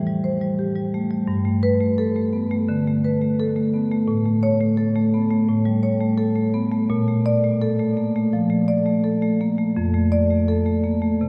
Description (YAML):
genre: classical, contemporary piece for solo marimba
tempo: 85 BPM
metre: 4/4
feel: rubato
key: unclear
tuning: A4 = 440 Hz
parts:
  - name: marimba with medium mallets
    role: solo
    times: 0.0-11.3 s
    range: F2 to D5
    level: -21 LUFS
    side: equal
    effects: none
room: wet cathedral reverb, RT60 6.6 s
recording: in a vast, echoing space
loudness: -21 LUFS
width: mono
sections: 0.0-11.3 A section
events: none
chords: 0.0 Am7; 1.3 Gadd9; 4.1 Aadd9; 6.9 Bbmaj7; 9.8 F6